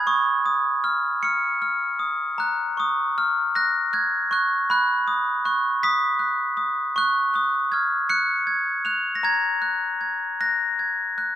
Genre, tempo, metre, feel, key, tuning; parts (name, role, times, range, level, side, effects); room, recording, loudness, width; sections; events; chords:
children's music, lullaby; 52 BPM (dotted quarters); 6/8; rubato; F# major; A4 = 440 Hz
glockenspiel with rubber mallets; solo; 0.0-11.4 s; A#5 to E#7; -20 LUFS; equal
moderate recital hall reverb, RT60 1.5 s; minimal, uncompressed stereo recording; -20 LUFS; side -10 dB against mid
0.0-2.4 A section; 2.4-11.4 B section
0.1 C#add9; 2.4 F#; 4.7 B; 7.0 C#sus4; 8.1 C#; 9.2 F#add9